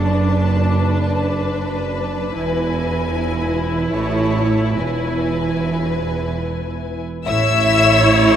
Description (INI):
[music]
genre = classical, slow romantic movement for string orchestra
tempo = 70-82 BPM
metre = 3/4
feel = rubato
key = A major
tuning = A4 = 440 Hz
[part]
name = rich studio violin section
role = melody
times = 0.0-8.3 s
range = G#5 to E6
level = -25 LUFS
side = left 7 dB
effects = none
[part]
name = rich symphonic violin section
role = second line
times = 0.0-8.3 s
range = B4 to E5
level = -23 LUFS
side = left 4 dB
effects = none
[part]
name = rich symphonic viola section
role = accompaniment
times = 0.0-8.4 s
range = D4 to C#5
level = -21 LUFS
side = equal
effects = none
[part]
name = clear symphonic cello section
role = bass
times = 0.0-8.4 s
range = E2 to A2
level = -22 LUFS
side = right 2 dB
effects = none
[part]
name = rich symphonic double bass section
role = bass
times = 0.0-8.4 s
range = E1 to A1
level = -23 LUFS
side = right 3 dB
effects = none
[sound]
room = moderate cathedral reverb, RT60 5.4 s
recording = in a vast, echoing space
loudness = -16 LUFS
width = side -9 dB against mid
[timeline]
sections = 0.0-7.3 A section; 7.3-8.4 B section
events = none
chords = 0.1 Bm7/F#; 2.4 E; 3.9 A; 4.8 E; 7.3 A